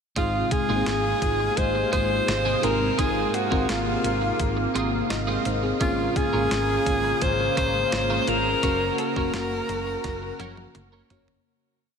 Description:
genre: 1980s-style pop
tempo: 85 BPM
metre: 4/4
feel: straight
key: Ab mixolydian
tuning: A4 = 439 Hz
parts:
  - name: clear alto saxophone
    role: melody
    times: 0.2-11.1 s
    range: F4 to C5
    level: -25 LUFS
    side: equal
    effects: diffuse ambient delay
  - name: FM electric piano with soft pad layer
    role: accompaniment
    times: 0.2-11.5 s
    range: Ab2 to Eb5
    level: -29 LUFS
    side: left 2 dB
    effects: chorus
  - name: sweeping resonant pad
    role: sustained chords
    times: 0.2-11.4 s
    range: C3 to F5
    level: -30 LUFS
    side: equal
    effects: chorus
  - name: twelve-string electric guitar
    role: riff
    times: 0.2-11.3 s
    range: Ab3 to Bb4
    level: -33 LUFS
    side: right 4 dB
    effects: ensemble chorus, diffuse ambient delay
  - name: hollow-body short-scale fingered electric bass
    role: bass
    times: 0.2-11.4 s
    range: Gb1 to Ab1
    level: -30 LUFS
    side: equal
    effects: none
  - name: clean 12-bit digital drum machine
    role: drums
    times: 0.2-11.4 s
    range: hi-hat, kick drum, snare drum, toms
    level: -31 LUFS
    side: equal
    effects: none
room: wet huge ambient reverb, RT60 7.6 s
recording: dreamy mix soaked in reverb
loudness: -21 LUFS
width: side -6 dB against mid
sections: 0.2-11.5 verse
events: fade-out 8.6-11.5; drum fill 10.0-11.5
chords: 0.2 Ab6; 5.8 Db6/Ab; 8.6 Gb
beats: | 0.16 0.87 1.57 2.28 | 2.99 3.69 4.40 5.10 | 5.81 6.52 7.22 7.93 | 8.63 9.34 10.04 10.75

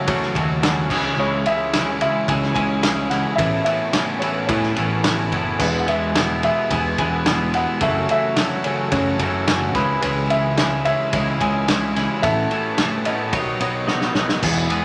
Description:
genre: indie rock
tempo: 109 BPM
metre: 4/4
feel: straight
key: unclear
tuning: A4 = 440 Hz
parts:
  - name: warm upright piano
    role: melody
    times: 0.0-14.1 s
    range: B4 to G#5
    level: -27 LUFS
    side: equal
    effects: none
  - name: overdriven combo organ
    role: sustained chords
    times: 0.0-14.8 s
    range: F#4 to E6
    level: -36 LUFS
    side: equal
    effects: none
  - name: overdriven semi-hollow guitar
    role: riff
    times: 0.0-14.8 s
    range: A2 to F#4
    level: -30 LUFS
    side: equal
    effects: none
  - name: twelve-string electric guitar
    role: riff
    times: 0.0-14.8 s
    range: E2 to C#5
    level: -26 LUFS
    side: equal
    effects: none
  - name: picked electric bass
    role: bass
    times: 0.1-14.8 s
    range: E1 to F#3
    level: -28 LUFS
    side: equal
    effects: none
  - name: loose indie drum kit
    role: drums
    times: 0.1-14.8 s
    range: crash cymbal, kick drum, ride cymbal, snare drum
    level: -26 LUFS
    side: equal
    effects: none
  - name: bell-like tine electric piano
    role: second line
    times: 5.6-14.1 s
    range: F#4 to B4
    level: -34 LUFS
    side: equal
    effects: none
room: wet club reverb, RT60 0.7 s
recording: none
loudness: -20 LUFS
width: mono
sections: 0.0-14.4 A section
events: drum fill 13.9-14.4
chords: 0.0 F#m7; 0.9 C#m; 3.4 Aadd9; 5.6 E; 7.8 F#m7; 9.8 C#m; 12.2 Aadd9; 13.3 Badd9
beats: 0.08 0.63 | 1.18 1.73 2.28 2.83 | 3.39 3.94 4.50 5.05 | 5.60 6.16 6.71 7.27 | 7.82 8.37 8.93 9.48 | 10.03 10.58 11.13 11.69 | 12.24 12.79 13.34 13.89 | 14.44

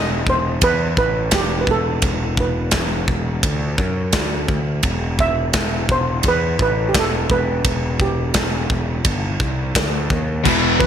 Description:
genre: heavy metal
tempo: 85 BPM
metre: 4/4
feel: straight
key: E minor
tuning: A4 = 440 Hz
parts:
  - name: steel pan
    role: melody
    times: 0.0-10.9 s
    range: G4 to E5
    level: -21 LUFS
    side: right 2 dB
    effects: ping-pong delay
  - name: fuzz picked electric bass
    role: bass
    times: 0.0-10.9 s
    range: E1 to F#2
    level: -22 LUFS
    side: equal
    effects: overdrive
  - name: tight metal drum kit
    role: drums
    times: 0.3-10.9 s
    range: crash cymbal, kick drum, ride cymbal, snare drum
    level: -20 LUFS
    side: equal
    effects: gated reverb
  - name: tight distorted guitar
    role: riff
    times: 10.4-10.9 s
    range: E2 to E3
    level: -19 LUFS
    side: left 15 dB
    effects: distortion
  - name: tight distorted guitar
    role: riff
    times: 10.4-10.9 s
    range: E2 to E3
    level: -20 LUFS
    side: right 13 dB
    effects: distortion
  - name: thick fuzz guitar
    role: riff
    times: 10.5-10.9 s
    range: E2 to E3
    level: -20 LUFS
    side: left 1 dB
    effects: distortion
room: light reverb, studio reverb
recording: bright 1980s-style digital production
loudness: -16 LUFS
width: side -9 dB against mid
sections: 0.0-10.9 A section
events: none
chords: 0.0 E5; 3.4 D6; 4.1 N.C.; 4.8 Em; 9.0 Gsus4; 9.8 N.C.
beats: 0.61 1.32 | 2.02 2.73 3.43 4.13 | 4.84 5.54 6.24 6.95 | 7.65 8.35 9.05 9.75 | 10.45

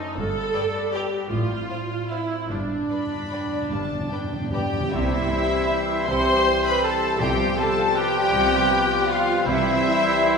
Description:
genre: classical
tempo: 141-171 BPM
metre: 3/4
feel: rubato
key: C major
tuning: A4 = 440 Hz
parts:
  - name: rich symphonic viola section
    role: accompaniment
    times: 0.0-10.4 s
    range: D4 to C5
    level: -27 LUFS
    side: right 2 dB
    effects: none
  - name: concert harp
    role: arpeggios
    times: 0.0-10.4 s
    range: F#2 to G5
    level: -31 LUFS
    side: left 3 dB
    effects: none
  - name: rich studio cello section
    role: bass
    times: 0.2-9.8 s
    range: G2 to C3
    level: -33 LUFS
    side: right 4 dB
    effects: none
  - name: rich symphonic double bass section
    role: bass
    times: 0.2-9.8 s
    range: G1 to C2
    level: -31 LUFS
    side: right 3 dB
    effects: none
  - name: warm symphonic violin section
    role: melody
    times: 0.5-10.4 s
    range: E5 to C6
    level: -28 LUFS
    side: left 4 dB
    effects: none
  - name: warm symphonic violin section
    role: second line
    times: 0.5-10.4 s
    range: E4 to D5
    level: -31 LUFS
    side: left 2 dB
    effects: none
  - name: timpani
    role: percussion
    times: 2.5-4.9, 7.2-7.7 s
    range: G2 to C3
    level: -32 LUFS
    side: equal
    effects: none
  - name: bright large flute ensemble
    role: second line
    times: 4.5-10.4 s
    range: E5 to C6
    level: -28 LUFS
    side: left 2 dB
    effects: none
  - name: mellow trumpet section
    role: stabs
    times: 4.5-10.4 s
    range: E4 to C5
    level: -28 LUFS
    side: left 1 dB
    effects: none
  - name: warm clarinet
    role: second line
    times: 4.9-10.4 s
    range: E4 to G4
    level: -32 LUFS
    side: left 3 dB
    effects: none
  - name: warm oboe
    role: second line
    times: 4.9-10.4 s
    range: B4 to C5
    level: -30 LUFS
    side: left 1 dB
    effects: none
  - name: mellow bassoon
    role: accompaniment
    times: 4.9-10.4 s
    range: G3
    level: -31 LUFS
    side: equal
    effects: none
  - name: clear trombone section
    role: sustained chords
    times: 4.9-10.4 s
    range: E3 to G3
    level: -30 LUFS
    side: right 1 dB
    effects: none
  - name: mellow French horn section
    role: sustained chords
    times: 4.9-10.4 s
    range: B3 to G4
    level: -31 LUFS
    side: left 1 dB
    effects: none
room: wet recital hall reverb, RT60 1.7 s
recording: recorded in a church or concert hall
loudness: -20 LUFS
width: side -5 dB against mid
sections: 0.0-4.9 A section; 4.9-10.4 B section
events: timpani fill 2.5-4.9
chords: 0.2 G; 1.3 F/A; 2.5 G; 4.9 C; 7.2 G7/C; 9.5 C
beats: | 0.18 0.56 0.95 | 1.32 1.70 2.11 | 2.50 2.90 3.33 | 3.72 4.12 4.54 | 4.92 5.30 5.70 | 6.07 6.45 6.84 | 7.20 7.58 7.96 | 8.33 8.71 9.10 | 9.47 9.84 10.23

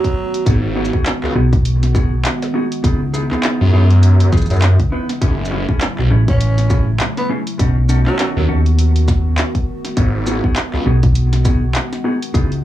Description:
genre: glitch hop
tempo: 101 BPM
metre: 4/4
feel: swing 58% on 16ths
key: unclear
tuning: A4 = 444 Hz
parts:
  - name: growling tenor saxophone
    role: melody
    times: 0.0-0.5, 6.3-8.4 s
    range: F#3 to C#4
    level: -25 LUFS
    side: right 2 dB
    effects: analog delay
  - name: warbly tape-like pad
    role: sustained chords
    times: 0.0-12.6 s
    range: C#3 to F#4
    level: -24 LUFS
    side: right 1 dB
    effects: chorus, built-in reverb, sidechain pumping
  - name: electronic kick drum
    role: drums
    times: 0.0-12.5 s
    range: none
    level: -17 LUFS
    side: equal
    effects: none
  - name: pop drum kit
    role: drums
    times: 0.0-12.6 s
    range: handclaps, hi-hat, shaker, snare drum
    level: -22 LUFS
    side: equal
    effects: none
  - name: mellow electric guitar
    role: stabs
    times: 0.5-12.5 s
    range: A3 to B4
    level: -23 LUFS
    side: equal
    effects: sidechain pumping, analog delay
  - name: phased detuned saw bass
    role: bass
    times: 0.5-10.8 s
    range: F#1 to F#2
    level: -13 LUFS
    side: equal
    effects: phaser
  - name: hollow-body short-scale fingered electric bass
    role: bass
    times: 1.4-12.6 s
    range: A1 to E2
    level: -14 LUFS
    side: equal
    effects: none
room: little or no reverb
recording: dry, gritty hardware recording, small room ambience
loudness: -13 LUFS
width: side -13 dB against mid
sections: 0.0-12.6 A section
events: none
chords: 0.5 G#m7; 2.8 C#m7; 5.2 F#m7; 7.6 B7; 10.0 G#m7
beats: | 0.46 1.06 1.65 2.25 | 2.84 3.43 4.03 4.62 | 5.22 5.81 6.41 7.00 | 7.59 8.19 8.78 9.38 | 9.97 10.56 11.16 11.75 | 12.35

